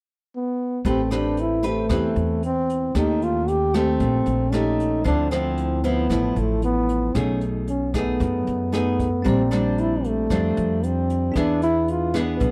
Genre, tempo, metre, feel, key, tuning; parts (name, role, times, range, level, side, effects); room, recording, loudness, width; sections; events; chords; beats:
bossa nova; 114 BPM; 4/4; straight; A minor; A4 = 440 Hz
mellow trombone; melody; 0.4-12.5 s; A3 to G4; -26 LUFS; equal
nylon-string guitar; accompaniment; 0.8-12.5 s; F#2 to B4; -28 LUFS; equal
upright bass; bass; 0.8-12.5 s; A1 to F#2; -28 LUFS; equal
jazz brush drum kit; drums; 0.8-12.5 s; hi-hat, kick drum, rim click; -33 LUFS; equal
bell-like tine electric piano; accompaniment; 9.2-12.5 s; C4 to Bb5; -34 LUFS; equal
small room ambience; -22 LUFS; mono
0.8-12.5 A section
0.0 N.C.; 0.8 Am9; 3.0 D#7#11; 5.1 Dm9; 7.2 B6; 9.3 Bb69; 11.4 E7
0.32 | 0.85 1.37 1.90 2.43 | 2.95 3.48 4.00 4.53 | 5.05 5.58 6.10 6.63 | 7.15 7.68 8.20 8.73 | 9.25 9.78 10.30 10.83 | 11.36 11.88 12.41